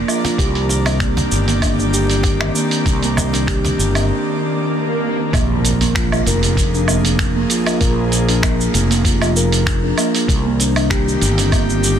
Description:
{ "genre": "organic downtempo", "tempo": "97 BPM", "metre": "4/4", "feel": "swing 54% on 16ths", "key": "unclear", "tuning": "A4 = 440 Hz", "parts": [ { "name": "airy breathy pad", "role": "sustained chords", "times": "0.0-12.0 s", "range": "Eb3 to Bb4", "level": "-23 LUFS", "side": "equal", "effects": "chorus, sidechain pumping" }, { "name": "steel tongue drum", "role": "arpeggios", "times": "0.0-11.7 s", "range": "Bb3 to Bb4", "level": "-20 LUFS", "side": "right 2 dB", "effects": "ping-pong delay" }, { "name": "twinkling granular texture", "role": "texture", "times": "0.0-4.1 s", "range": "D5", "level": "-32 LUFS", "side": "right 2 dB", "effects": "built-in reverb" }, { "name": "dusty soul sampler-style drum kit", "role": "drums", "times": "0.1-12.0 s", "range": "finger snaps, hi-hat, shaker, woodblock", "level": "-21 LUFS", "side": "right 2 dB", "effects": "soft clipping on snare" }, { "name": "cajon", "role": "percussion", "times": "0.2-3.8 s", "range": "none", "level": "-25 LUFS", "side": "right 1 dB", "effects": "none" }, { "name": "fretless electric bass", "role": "bass", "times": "0.4-12.0 s", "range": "F1 to C2", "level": "-18 LUFS", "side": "equal", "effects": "tube saturation, wide subtle chorus, sidechain pumping" }, { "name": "electronic kick drum", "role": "drums", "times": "0.4-11.7 s", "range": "none", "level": "-19 LUFS", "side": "equal", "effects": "none" }, { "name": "swell and impact", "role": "sound effects", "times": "4.4-7.8 s", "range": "none", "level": "-25 LUFS", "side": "equal", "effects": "none" } ], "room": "light reverb, digital ambience", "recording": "dense, heavily limited modern master", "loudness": "-14 LUFS", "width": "side -9 dB against mid", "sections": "0.0-5.3 A section; 5.3-12.0 B section", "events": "break 4.1-5.3; swell 4.4-5.3; impact 5.3-7.8", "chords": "0.4 Cm9; 5.3 Bb7; 10.3 Cm9" }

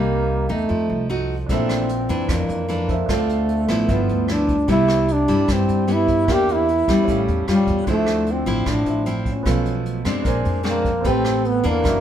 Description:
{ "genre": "bossa nova", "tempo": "151 BPM", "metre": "4/4", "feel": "straight", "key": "A minor", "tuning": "A4 = 439 Hz", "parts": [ { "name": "mellow trombone", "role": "melody", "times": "0.0-12.0 s", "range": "G3 to G4", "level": "-21 LUFS", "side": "right 1 dB", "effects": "none" }, { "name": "nylon-string guitar", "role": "accompaniment", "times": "0.0-12.0 s", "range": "F2 to B4", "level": "-23 LUFS", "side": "left 2 dB", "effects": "none" }, { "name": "upright bass", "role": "bass", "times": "0.0-12.0 s", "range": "F#1 to G2", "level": "-24 LUFS", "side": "equal", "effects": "none" }, { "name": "warm concert grand piano", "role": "accompaniment", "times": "1.5-12.0 s", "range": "B3 to Ab5", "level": "-29 LUFS", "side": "right 4 dB", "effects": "none" }, { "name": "vintage brush drum kit", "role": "drums", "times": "1.5-11.9 s", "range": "hi-hat, kick drum, rim click", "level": "-27 LUFS", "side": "equal", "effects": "none" } ], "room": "wet studio reverb, RT60 0.9 s", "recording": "band playing live in one room", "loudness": "-17 LUFS", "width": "side -10 dB against mid", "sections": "0.0-12.0 A section", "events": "none", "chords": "0.0 Cm7; 0.7 F7b9; 1.5 Bbmaj9#11; 3.1 Dm7; 3.9 G13; 4.7 Cmaj7; 6.3 Em7b5; 7.1 A7b13; 7.9 Dm9; 9.5 Bm7b5; 10.3 Bb9; 11.0 Am9" }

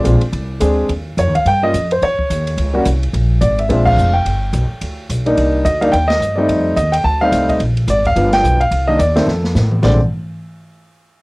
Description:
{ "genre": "jazz piano trio", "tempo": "215 BPM", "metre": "4/4", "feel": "swing 60% on 8ths", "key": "Bb mixolydian", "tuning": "A4 = 440 Hz", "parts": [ { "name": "warm grand piano", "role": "melody", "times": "0.0-10.0 s", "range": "D3 to A5", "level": "-15 LUFS", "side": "equal", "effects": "cassette tape" }, { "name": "upright bass", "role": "bass", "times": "0.0-10.0 s", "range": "F1 to A2", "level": "-16 LUFS", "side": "equal", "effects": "none" }, { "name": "open jazz drum kit", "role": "drums", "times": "0.1-9.9 s", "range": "china cymbal, crash cymbal, hi-hat, kick drum, ride cymbal, snare drum, toms", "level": "-25 LUFS", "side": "equal", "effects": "cassette tape" } ], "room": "light reverb", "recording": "home recording on cassette", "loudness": "-13 LUFS", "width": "side -24 dB against mid", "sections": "0.0-9.8 A section; 9.8-10.9 B section", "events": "band accent 3.8, 6.1, 8.3; drum fill 9.3-9.8", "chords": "0.0 Bb7; 0.9 Eb7; 2.0 E5; 3.1 Bb7; 4.3 G; 5.4 Cm7; 6.5 F7; 7.6 Bb7; 8.2 G7; 8.7 Cm; 9.3 F; 9.8 Bb" }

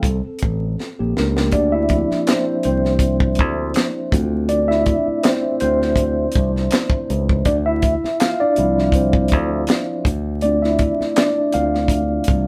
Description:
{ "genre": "R&B, neo-soul", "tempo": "81 BPM", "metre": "4/4", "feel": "straight", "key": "D minor", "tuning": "A4 = 440 Hz", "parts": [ { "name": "mellow tine electric piano", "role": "accompaniment", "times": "0.0-12.5 s", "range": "F3 to F5", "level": "-21 LUFS", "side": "equal", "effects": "none" }, { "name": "fingered electric bass", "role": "bass", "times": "0.0-12.5 s", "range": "A1 to D2", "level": "-24 LUFS", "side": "equal", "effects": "none" }, { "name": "tight funk drum kit", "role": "drums", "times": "0.0-12.5 s", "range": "handclaps, hi-hat, kick drum, snare drum", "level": "-22 LUFS", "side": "equal", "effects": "none" } ], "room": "light reverb", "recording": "band playing live in one room, vinyl crackle", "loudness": "-18 LUFS", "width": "mono", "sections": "0.0-1.5 A section; 1.5-12.5 B section", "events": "drum fill 0.8-1.5; tine electric piano solo 1.5-12.5", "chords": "0.0 A7b9; 1.5 Dm9; 4.1 C69; 7.5 Dm9" }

